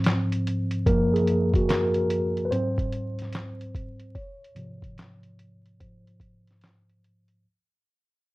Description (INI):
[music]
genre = lo-fi hip hop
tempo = 73 BPM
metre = 4/4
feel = swing 66% on 16ths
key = Db major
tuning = A4 = 442 Hz
[part]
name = mellow tine electric piano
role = accompaniment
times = 0.0-7.5 s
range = Gb2 to Db5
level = -24 LUFS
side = equal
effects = medium stereo tremolo, cassette tape, low-pass filter
[part]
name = lo-fi sampler-style drum kit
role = drums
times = 0.0-7.4 s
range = handclaps, hi-hat, kick drum, snare drum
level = -27 LUFS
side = equal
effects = vintage 12-bit sampler grit
[sound]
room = moderate studio reverb, RT60 0.7 s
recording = worn, warbling old tape, cassette tape, vinyl crackle, warbly pitch drift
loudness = -22 LUFS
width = side -20 dB against mid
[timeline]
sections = 0.0-7.4 A section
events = fade-out 0.0-7.4; tine electric piano solo 0.0-7.4; filter sweep on tine electric piano 0.0-7.4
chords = 0.0 Ab6; 0.9 Gbmaj7; 2.5 Ab7; 4.1 Dbmaj7/Ab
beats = 0.04 | 0.86 1.68 2.50 3.33 | 4.15 4.97 5.79 6.61